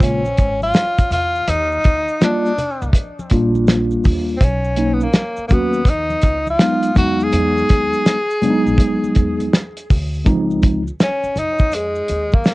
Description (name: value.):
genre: hip hop, jazz-hop.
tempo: 82 BPM.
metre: 4/4.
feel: swing 66% on 16ths.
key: Db major.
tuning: A4 = 441 Hz.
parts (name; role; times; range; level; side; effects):
warm tenor saxophone; melody; 0.0-12.5 s; Ab3 to G#4; -20 LUFS; left 1 dB; cassette tape, analog delay.
mellow tine electric piano; accompaniment; 0.0-10.8 s; Db3 to Gb4; -17 LUFS; equal; medium stereo tremolo.
upright bass; bass; 0.0-12.4 s; Ab1 to F2; -24 LUFS; equal; none.
cloth-damped thuddy drum kit; drums; 0.0-12.5 s; hi-hat, kick drum, snare drum; -14 LUFS; equal; cassette tape.
congas and maracas; percussion; 0.0-12.5 s; none; -33 LUFS; left 1 dB; none.
room: light reverb.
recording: home recording on cassette.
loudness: -14 LUFS.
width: side -20 dB against mid.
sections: 0.0-10.3 A section; 10.3-12.5 B section.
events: tenor saxophone solo 10.3-12.5.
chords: 0.0 Gbmaj9 (rootless); 1.5 Ebmaj9; 4.4 Cbmaj9; 7.0 Emaj9; 10.3 Dbmaj9.